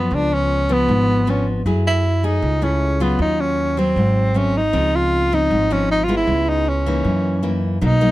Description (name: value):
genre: bossa nova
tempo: 156 BPM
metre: 4/4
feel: straight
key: Db major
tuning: A4 = 440 Hz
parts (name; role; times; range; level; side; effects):
- breathy tenor saxophone; melody; 0.0-8.1 s; Cb4 to F4; -19 LUFS; equal; none
- nylon-string guitar; accompaniment; 0.0-8.1 s; Gb2 to Ab4; -21 LUFS; left 1 dB; none
- upright bass; bass; 0.0-8.1 s; Ab1 to Gb2; -21 LUFS; equal; none
room: little or no reverb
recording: close, detailed microphones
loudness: -16 LUFS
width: side -16 dB against mid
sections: 0.0-7.8 A section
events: none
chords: 0.1 Db7b9; 1.7 Gbm9; 3.2 Ebm9; 4.0 Ab7b9; 4.7 Dbmaj9; 6.3 Dbm7; 7.0 Gb6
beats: | 0.11 0.50 0.88 1.27 | 1.65 2.04 2.42 2.81 | 3.19 3.58 3.96 4.35 | 4.73 5.12 5.50 5.89 | 6.28 6.66 7.04 7.43 | 7.82